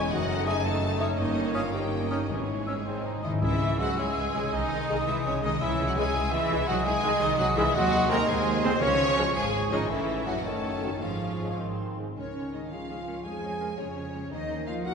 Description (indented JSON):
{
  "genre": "classical, dramatic, fast romantic movement for symphony orchestra",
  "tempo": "103-115 BPM (dotted quarters)",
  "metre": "6/8",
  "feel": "rubato",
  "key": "C# minor, Db major from 7.7 s",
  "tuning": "A4 = 440 Hz",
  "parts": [
    { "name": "clear studio violin section", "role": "melody", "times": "0.0-14.9 s", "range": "Db4 to Db6", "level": "-35 LUFS", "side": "left 3 dB", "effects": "none" },
    { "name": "mellow clarinet", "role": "second line", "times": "0.0-14.9 s", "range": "G#3 to E5", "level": "-37 LUFS", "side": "right 1 dB", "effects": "none" },
    { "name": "rich symphonic violin section", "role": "second line", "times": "0.0-14.9 s", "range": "B#3 to Ab5", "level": "-36 LUFS", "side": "left 2 dB", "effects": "none" },
    { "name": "warm symphonic viola section", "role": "accompaniment", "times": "0.0-14.9 s", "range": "D#3 to E4", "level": "-38 LUFS", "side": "right 1 dB", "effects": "none" },
    { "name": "mellow French horn section", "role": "sustained chords", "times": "0.0-14.9 s", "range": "G#3 to Ab4", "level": "-36 LUFS", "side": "left 2 dB", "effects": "none" },
    { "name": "concert harp", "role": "arpeggios", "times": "0.0-14.9 s", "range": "E2 to Ab5", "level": "-36 LUFS", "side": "left 7 dB", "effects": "none" },
    { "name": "mellow trumpet", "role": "stabs", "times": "0.0-14.9 s", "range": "C#4 to D#5", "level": "-34 LUFS", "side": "right 2 dB", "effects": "none" },
    { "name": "rich symphonic cello section", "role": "bass", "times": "0.0-14.9 s", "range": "E2 to Db4", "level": "-34 LUFS", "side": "right 2 dB", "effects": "none" },
    { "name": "rich symphonic double bass section", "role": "bass", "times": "0.0-14.9 s", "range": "E1 to F2", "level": "-34 LUFS", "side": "right 2 dB", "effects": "none" },
    { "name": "bright silver concert flute", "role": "second line", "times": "0.5-14.9 s", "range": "Db5 to E6", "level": "-35 LUFS", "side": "equal", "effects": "none" },
    { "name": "clear bassoon", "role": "accompaniment", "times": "0.5-12.0 s", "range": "Eb3 to E4", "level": "-36 LUFS", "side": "right 1 dB", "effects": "none" },
    { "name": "timpani", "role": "percussion", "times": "2.3-6.1, 8.8-9.3, 12.2-12.7 s", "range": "G#2 to C#3", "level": "-34 LUFS", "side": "equal", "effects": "none" },
    { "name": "warm trombone section", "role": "sustained chords", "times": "3.8-12.1 s", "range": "D#3 to A3", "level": "-38 LUFS", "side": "right 2 dB", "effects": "none" }
  ],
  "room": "wet concert hall reverb, RT60 2.2 s",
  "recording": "heard from further back in the room, nothing above 11.0 kHz",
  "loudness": "-25 LUFS",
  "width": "side -6 dB against mid",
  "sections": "0.0-3.4 A section; 3.4-12.2 B section; 12.2-14.9 C section",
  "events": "timpani fill 2.9-3.4",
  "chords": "0.1 D#dim/F#; 1.2 D#7/G; 2.3 C#m/G#; 2.9 G#; 3.4 C#m; 4.5 G#/B#; 5.6 C#m; 6.7 G#/B#; 7.7 Ab7/Eb; 8.8 Db; 9.9 A; 10.4 Ebm7b5/Gb; 11.0 Db/Ab; 11.6 Ab; 12.2 Db; 13.2 Db/F; 14.3 Ebm",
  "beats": "| 0.12 0.65 | 1.18 1.73 | 2.29 2.86 | 3.42 3.98 | 4.53 5.07 | 5.61 6.15 | 6.68 7.21 | 7.74 8.28 | 8.81 9.35 | 9.89 10.45 | 11.02 11.60 | 12.17 12.71 | 13.25 13.78 | 14.31 14.85"
}